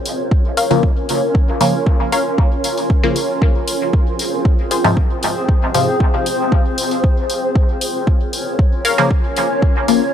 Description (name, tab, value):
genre	dub techno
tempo	116 BPM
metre	4/4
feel	straight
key	Bb minor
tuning	A4 = 439 Hz
part	granular cloud pad	sustained chords	0.0-10.1 s	C4 to Db5	-20 LUFS	equal	built-in reverb, sidechain pumping
part	electronic hi-hat	drums	0.1-10.0 s	none	-24 LUFS	left 2 dB	none
part	electronic kick drum	drums	0.3-9.7 s	none	-15 LUFS	equal	none
part	filtered dub chord stab	riff	0.6-4.8, 8.8-8.9 s	F4 to F5	-22 LUFS	left 2 dB	chorus, sidechain pumping, dub echo
part	filtered dub chord stab	stabs	0.7-5.9, 9.0-10.0 s	Ab2 to Bb3	-19 LUFS	left 2 dB	phaser, sidechain pumping, dub echo
room	digital ambience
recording	dry, gritty hardware recording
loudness	-14 LUFS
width	side -9 dB against mid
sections	0.0-10.1 A section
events	none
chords	0.0 Bbm; 3.4 Fm; 7.6 Bbm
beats	0.31 0.83 | 1.35 1.86 2.38 2.90 | 3.42 3.93 4.45 4.97 | 5.49 6.00 6.52 7.04 | 7.55 8.07 8.59 9.11 | 9.62